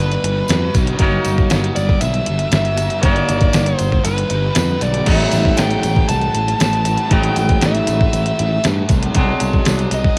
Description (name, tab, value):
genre	rock, shoegaze and dream pop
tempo	118 BPM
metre	4/4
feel	straight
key	G major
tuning	A4 = 440 Hz
part	bluesy overdriven lead guitar	melody	0.0-10.2 s	B4 to A5	-24 LUFS	equal	distortion, cassette tape, analog delay
part	thick fuzz guitar	riff	0.0-10.2 s	G2 to C4	-27 LUFS	equal	distortion, ensemble chorus
part	twangy electric guitar	riff	0.0-10.2 s	A2 to D5	-24 LUFS	equal	reverse reverb
part	fingered electric bass	bass	0.0-10.1 s	G1 to G2	-22 LUFS	equal	none
part	detuned 8-bit digital drum machine	drums	0.1-10.2 s	crash cymbal, hi-hat, kick drum, snare drum	-19 LUFS	equal	cassette tape
part	tambourine	percussion	0.5-10.0 s	none	-38 LUFS	equal	none
room	light reverb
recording	home recording on cassette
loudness	-16 LUFS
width	mono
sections	0.0-10.2 A section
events	kick and snare drop out 4.8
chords	0.0 G6; 5.1 Am7; 9.2 Cm6